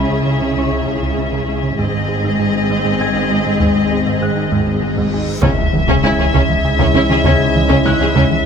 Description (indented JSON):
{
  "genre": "cinematic, hybrid orchestral and electronic film score",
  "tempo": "66 BPM (dotted quarters)",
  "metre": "6/8",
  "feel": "straight",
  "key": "C# minor",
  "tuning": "A4 = 435 Hz",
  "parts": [
    { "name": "rich symphonic violin section", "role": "melody", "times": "0.0-8.5 s", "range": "D#5 to E5", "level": "-21 LUFS", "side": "left 3 dB", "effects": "none" },
    { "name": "warm symphonic violin section", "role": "second line", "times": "0.0-8.2 s", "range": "C#4 to G#4", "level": "-25 LUFS", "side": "left 2 dB", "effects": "none" },
    { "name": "warm symphonic viola section", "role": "accompaniment", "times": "0.0-8.2 s", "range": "B#3 to C#4", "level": "-24 LUFS", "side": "right 2 dB", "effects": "none" },
    { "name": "hollow soft pad", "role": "sustained chords", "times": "0.0-8.5 s", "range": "G#3 to D#5", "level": "-24 LUFS", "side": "equal", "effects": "chorus" },
    { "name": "thumb-piano-like synth pluck", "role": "arpeggios", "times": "0.0-8.2 s", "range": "C#3 to G#4", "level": "-26 LUFS", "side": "left 2 dB", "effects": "none" },
    { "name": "fat analog bass", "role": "riff", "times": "0.0-8.4 s", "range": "C#2 to G#3", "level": "-22 LUFS", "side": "right 2 dB", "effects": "none" },
    { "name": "warm studio double bass section", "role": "bass", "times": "0.0-8.2 s", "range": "G#1 to C#2", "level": "-23 LUFS", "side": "right 3 dB", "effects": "none" },
    { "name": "warm symphonic cello section", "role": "bass", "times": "0.0-8.2 s", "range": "G#2 to C#3", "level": "-21 LUFS", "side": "left 1 dB", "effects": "none" },
    { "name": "warm baby grand piano", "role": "texture", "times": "0.0-8.5 s", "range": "E4 to A6", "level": "-29 LUFS", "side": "left 4 dB", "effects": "ping-pong delay" },
    { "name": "taiko ensemble", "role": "drums", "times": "1.8-8.5 s", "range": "none", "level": "-21 LUFS", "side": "left 1 dB", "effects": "none" },
    { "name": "reverse cymbal and impact", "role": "sound effects", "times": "5.1-7.2 s", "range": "none", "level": "-26 LUFS", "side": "left 1 dB", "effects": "none" },
    { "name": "mellow trombone section", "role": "sustained chords", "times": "5.4-8.5 s", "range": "G#2 to G#3", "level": "-25 LUFS", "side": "right 6 dB", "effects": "none" },
    { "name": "warm French horn section", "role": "sustained chords", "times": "5.4-8.5 s", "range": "C#4 to E4", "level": "-24 LUFS", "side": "left 3 dB", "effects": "none" },
    { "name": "pure sine sub bass", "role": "bass", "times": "5.4-8.5 s", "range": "C#2", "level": "-21 LUFS", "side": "equal", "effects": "none" }
  ],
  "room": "light reverb",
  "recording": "close, detailed microphones",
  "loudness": "-13 LUFS",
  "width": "side -7 dB against mid",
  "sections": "0.0-5.4 A section; 5.4-8.5 B section",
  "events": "reverse cymbal 5.1-5.4; impact 5.4-7.2",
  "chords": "0.0 C#m; 1.8 G#; 5.4 C#m"
}